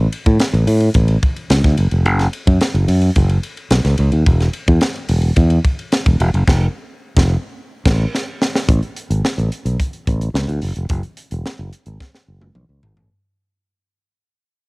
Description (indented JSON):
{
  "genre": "polished 1980s jazz-funk pop",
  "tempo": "109 BPM",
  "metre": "4/4",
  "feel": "straight",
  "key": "unclear",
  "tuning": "A4 = 440 Hz",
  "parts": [
    { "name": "fingered electric bass", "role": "bass", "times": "0.0-13.1 s", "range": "E1 to A2", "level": "-14 LUFS", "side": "equal", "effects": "none" },
    { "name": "crisp fusion drum kit", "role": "drums", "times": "0.1-13.1 s", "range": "crash cymbal, hi-hat, kick drum, ride cymbal, snare drum, toms", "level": "-18 LUFS", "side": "equal", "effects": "cassette tape" }
  ],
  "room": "little or no reverb",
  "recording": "home recording on cassette",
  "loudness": "-14 LUFS",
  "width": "side -30 dB against mid",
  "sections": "0.0-8.7 A section; 8.7-13.1 B section",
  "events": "band accent 6.5-8.7; drum fill 8.1-8.7, 12.0-13.1; fade-out 8.7-13.1",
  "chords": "none"
}